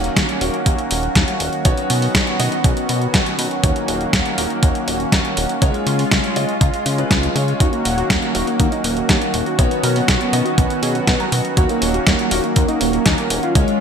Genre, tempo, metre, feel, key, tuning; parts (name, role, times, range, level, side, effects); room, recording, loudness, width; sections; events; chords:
italo disco; 121 BPM; 4/4; straight; Eb minor; A4 = 440 Hz
lush unison pad; sustained chords; 0.0-13.8 s; Eb3 to Gb4; -22 LUFS; right 1 dB; chorus
warm concert grand piano; stabs; 0.0-13.8 s; Ab3 to D#5; -25 LUFS; left 3 dB; wide subtle chorus
chorused synth bass; bass; 0.0-13.6 s; Eb1 to Db3; -23 LUFS; equal
clean 12-bit digital drum machine; drums; 0.0-13.8 s; hi-hat, snare drum; -21 LUFS; equal; overdrive, gated reverb
electronic kick drum; drums; 0.2-13.7 s; -18 LUFS; equal; overdrive
wide unison lead; melody; 7.6-13.8 s; Ab3 to Bb4; -21 LUFS; right 1 dB; lush chorus, ping-pong delay
moderate plate reverb, RT60 2.3 s; bright 1980s-style digital production; -15 LUFS; side -7 dB against mid
0.0-13.8 A section
0.0 Ebm7; 1.7 Badd9; 3.6 Ebm7; 5.6 Db; 7.6 Ebm7; 9.6 Badd9; 11.6 Ebm7